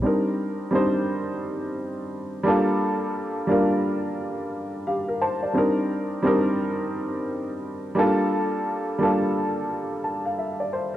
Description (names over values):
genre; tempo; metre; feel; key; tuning
hip hop; 87 BPM; 4/4; swing 62% on 16ths; C dorian; A4 = 441 Hz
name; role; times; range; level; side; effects
warm upright piano; accompaniment; 0.0-11.0 s; G3 to A5; -22 LUFS; equal; cassette tape, low-pass filter
room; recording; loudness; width
moderate plate reverb, RT60 3.1 s; rough home demo mix; -22 LUFS; side -13 dB against mid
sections
0.0-11.0 A section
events
upright piano fill 4.5-5.6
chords
0.0 Cm9; 2.5 Gm9; 5.6 Cm9; 8.0 Gm9